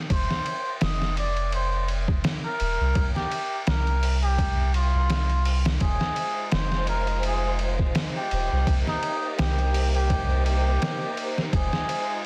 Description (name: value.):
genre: trip hop.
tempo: 84 BPM.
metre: 4/4.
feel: swing 56% on 16ths.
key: F minor.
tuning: A4 = 440 Hz.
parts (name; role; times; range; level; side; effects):
trumpet with cup mute; melody; 0.1-12.2 s; Eb4 to Eb5; -32 LUFS; equal; vintage 12-bit sampler grit, tape echo.
soft dub sub bass; bass; 0.1-11.7 s; Eb1 to C2; -27 LUFS; equal; none.
trip hop sampler-style drum kit; drums; 0.1-12.1 s; hi-hat, kick drum, ride cymbal, snare drum; -30 LUFS; equal; overdrive.
rich chamber violin section; sustained chords; 5.8-12.3 s; Ab3 to C5; -35 LUFS; equal; none.
room: digital ambience.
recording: dense, heavily limited modern master, vinyl crackle.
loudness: -25 LUFS.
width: mono.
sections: 0.0-12.3 A section.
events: none.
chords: 0.1 F5; 3.0 C7sus4; 5.8 Fm7; 8.7 Cm7; 11.5 Fm7.